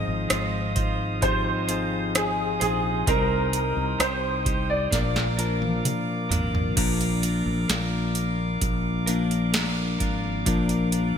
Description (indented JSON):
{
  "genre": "pop ballad",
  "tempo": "65 BPM",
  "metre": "4/4",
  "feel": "straight",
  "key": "unclear",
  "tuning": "A4 = 440 Hz",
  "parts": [
    { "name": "clear baby grand piano", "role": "melody", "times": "0.0-5.8 s", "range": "Ab4 to Eb5", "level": "-27 LUFS", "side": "right 1 dB", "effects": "ensemble chorus, digital delay" },
    { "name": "bell-like tine electric piano", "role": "accompaniment", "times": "0.0-11.2 s", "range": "Ab2 to C5", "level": "-28 LUFS", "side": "left 4 dB", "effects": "wide subtle chorus" },
    { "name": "tonewheel organ", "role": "sustained chords", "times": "0.0-11.2 s", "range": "Bb4 to Eb6", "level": "-33 LUFS", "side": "right 1 dB", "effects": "stopped rotary speaker" },
    { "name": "direct-recorded clean electric guitar", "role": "arpeggios", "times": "0.0-11.2 s", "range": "Bb2 to C5", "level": "-34 LUFS", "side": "right 5 dB", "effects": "wide subtle chorus" },
    { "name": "mellow fretless electric bass", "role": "bass", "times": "0.0-11.1 s", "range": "Ab1 to C2", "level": "-29 LUFS", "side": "equal", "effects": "analog chorus" },
    { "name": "booming analog drum machine", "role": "drums", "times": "0.3-11.1 s", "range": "crash cymbal, hi-hat, kick drum, rim click, snare drum, toms", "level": "-27 LUFS", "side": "right 1 dB", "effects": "overdrive, gated reverb" }
  ],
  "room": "light reverb",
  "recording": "bright 1980s-style digital production",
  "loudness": "-22 LUFS",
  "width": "side -8 dB against mid",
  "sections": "0.0-6.8 A section; 6.8-11.2 B section",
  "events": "drum fill 4.9-6.8; tine electric piano solo 6.8-11.2",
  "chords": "0.0 Fm7/Ab; 3.1 Cm; 4.9 Bb"
}